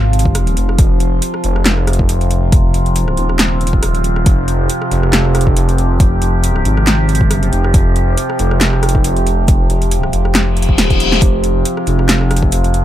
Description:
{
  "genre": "deep dubstep",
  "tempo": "138 BPM",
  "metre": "4/4",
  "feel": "swing 55% on 16ths, half-time",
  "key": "F minor",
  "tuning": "A4 = 440 Hz",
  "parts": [
    { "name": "overtone-sweeping drone", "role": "sustained chords", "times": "0.0-12.8 s", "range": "C3 to G4", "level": "-18 LUFS", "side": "right 1 dB", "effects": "chorus, built-in reverb" },
    { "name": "dark detuned saw bass", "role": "bass", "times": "0.0-12.8 s", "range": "Eb1 to Ab1", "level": "-14 LUFS", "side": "equal", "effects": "none" },
    { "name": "deep house drum kit", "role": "drums", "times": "0.1-12.8 s", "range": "handclaps, hi-hat, rim click, snare drum", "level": "-18 LUFS", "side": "equal", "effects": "overdrive" },
    { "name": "electronic kick drum", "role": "drums", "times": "0.3-12.5 s", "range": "none", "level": "-13 LUFS", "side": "equal", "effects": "overdrive" },
    { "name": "reverse cymbal", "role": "sound effects", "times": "10.5-11.2 s", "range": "none", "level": "-19 LUFS", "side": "left 5 dB", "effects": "none" }
  ],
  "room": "little or no reverb",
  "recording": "none",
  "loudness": "-11 LUFS",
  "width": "side -12 dB against mid",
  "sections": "0.0-12.8 A section",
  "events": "reverse cymbal 10.5-11.2; drum fill 10.8-11.2",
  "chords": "0.0 F5"
}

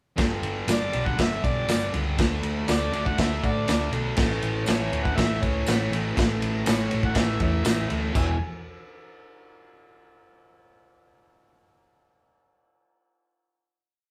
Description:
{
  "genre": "garage rock duo or trio",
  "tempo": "121 BPM",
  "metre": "4/4",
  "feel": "straight",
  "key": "unclear",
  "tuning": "A4 = 439 Hz",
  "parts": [
    { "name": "fuzz guitar", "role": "riff", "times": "0.2-8.3 s", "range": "E2 to D4", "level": "-31 LUFS", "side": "equal", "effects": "distortion" },
    { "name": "hollow-body short-scale picked electric bass", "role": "bass", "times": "0.2-8.4 s", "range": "E1 to A2", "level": "-32 LUFS", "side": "equal", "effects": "none" },
    { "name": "crunchy breakbeat drum kit", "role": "drums", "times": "0.2-8.3 s", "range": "crash cymbal, kick drum, ride cymbal, snare drum", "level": "-28 LUFS", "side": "equal", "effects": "none" },
    { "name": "overdriven harmonica", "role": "melody", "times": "0.7-8.4 s", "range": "E4 to G#5", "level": "-33 LUFS", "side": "equal", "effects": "none" },
    { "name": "tambourine", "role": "percussion", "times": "0.7-8.4 s", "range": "none", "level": "-43 LUFS", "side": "equal", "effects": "none" }
  ],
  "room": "moderate studio reverb, RT60 0.8 s",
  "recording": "band playing live in one room",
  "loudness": "-25 LUFS",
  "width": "mono",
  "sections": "0.2-8.2 pre-chorus; 8.2-10.1 final chord",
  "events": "none",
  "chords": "0.2 G; 2.2 D5; 4.2 A; 8.2 E5"
}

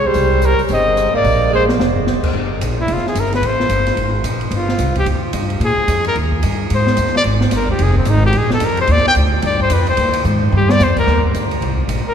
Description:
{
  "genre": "jazz, small-group swing and bop",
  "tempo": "220 BPM",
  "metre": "4/4",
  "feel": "swing 61% on 8ths",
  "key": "Eb major",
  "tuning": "A4 = 440 Hz",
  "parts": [
    { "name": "breathy trumpet", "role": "melody", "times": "0.0-12.1 s", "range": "C4 to G5", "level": "-17 LUFS", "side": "left 2 dB", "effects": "none" },
    { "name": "warm tenor saxophone", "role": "second line", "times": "0.0-1.7 s", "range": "G3 to C4", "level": "-22 LUFS", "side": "right 4 dB", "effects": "none" },
    { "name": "upright bass", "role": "bass", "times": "0.0-12.1 s", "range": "F1 to Bb2", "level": "-17 LUFS", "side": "equal", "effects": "none" },
    { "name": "open jazz drum kit", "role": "drums", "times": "0.1-12.0 s", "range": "crash cymbal, hi-hat, kick drum, ride cymbal, rim click, snare drum, toms", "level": "-22 LUFS", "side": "right 1 dB", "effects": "none" }
  ],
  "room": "wet cathedral reverb, RT60 6.7 s",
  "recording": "recorded in a church or concert hall",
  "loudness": "-13 LUFS",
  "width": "side -8 dB against mid",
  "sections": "0.0-2.3 A section; 2.3-11.1 B section; 11.1-12.1 B section",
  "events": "drum fill 1.5-2.1, 10.3-10.8; trumpet solo 2.3-12.1",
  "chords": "0.2 Cm; 1.2 Bb; 2.3 Fsus2; 3.4 Gsus24; 4.0 Abadd9; 4.5 G5; 5.6 Bb5; 6.2 Eb; 6.7 Abmaj7; 7.8 Fm; 8.3 Bb5; 8.9 Ebmaj9; 11.1 Eb5"
}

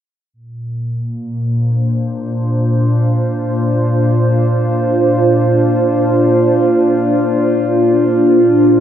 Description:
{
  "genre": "ambient",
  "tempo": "free time",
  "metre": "none",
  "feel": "none",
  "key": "Bb major",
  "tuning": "A4 = 440 Hz",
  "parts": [
    { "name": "warbly tape-like pad", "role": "sustained chords", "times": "0.6-8.8 s", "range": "Bb2 to C5", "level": "-12 LUFS", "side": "equal", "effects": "chorus, built-in reverb, phaser" }
  ],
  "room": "wet cathedral reverb, RT60 5.6 s",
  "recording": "in a vast, echoing space",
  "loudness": "-12 LUFS",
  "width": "side -9 dB against mid",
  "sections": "0.3-8.8 A section",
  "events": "none",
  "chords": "0.3 Bbadd9"
}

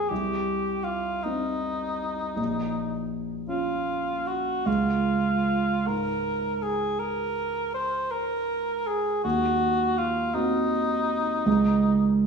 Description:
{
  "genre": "classical, romantic duo for cor anglais and grand piano",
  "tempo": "54 BPM (dotted quarters)",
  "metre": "12/8",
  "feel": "rubato",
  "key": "unclear",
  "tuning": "A4 = 440 Hz",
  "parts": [
    { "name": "mellow cor anglais", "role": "melody", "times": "0.0-12.2 s", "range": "Eb4 to C5", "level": "-27 LUFS", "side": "left 1 dB", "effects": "none" },
    { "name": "dark grand piano", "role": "accompaniment", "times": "0.0-12.3 s", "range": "Bb1 to Gb4", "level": "-26 LUFS", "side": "right 3 dB", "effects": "none" }
  ],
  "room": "wet recital hall reverb, RT60 1.6 s",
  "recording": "studio ambience",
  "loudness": "-24 LUFS",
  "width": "side -5 dB against mid",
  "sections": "0.0-12.3 A section",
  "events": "none",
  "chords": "0.1 Cm; 2.4 Bbm; 4.7 Db; 9.2 Cdim/Eb; 11.5 Db5"
}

